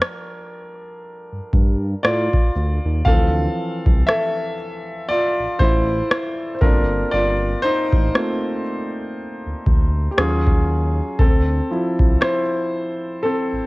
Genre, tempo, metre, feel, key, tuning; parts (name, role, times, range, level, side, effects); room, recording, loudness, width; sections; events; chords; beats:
contemporary R&B; 59 BPM; 4/4; swing 58% on 16ths; A4 = 443 Hz
warm concert grand piano; accompaniment; 0.0-13.7 s; E3 to F5; -21 LUFS; equal; cassette tape
booming analog drum machine; drums; 0.0-12.5 s; kick drum, rim click; -16 LUFS; equal; cassette tape
smooth synth bass; bass; 1.3-13.6 s; G1 to A2; -21 LUFS; equal
little or no reverb; home recording on cassette; -17 LUFS; side -22 dB against mid
0.0-13.7 A section
break 0.0-3.1; grand piano solo 0.0-13.7
0.0 Ebmaj9#11 (rootless); 3.1 Dm9; 6.6 Gm11; 10.2 Ebm9; 11.2 Dm9
0.01 1.02 2.04 | 3.06 4.08 5.09 6.11 | 7.13 8.14 9.16 10.18 | 11.19 12.21 13.23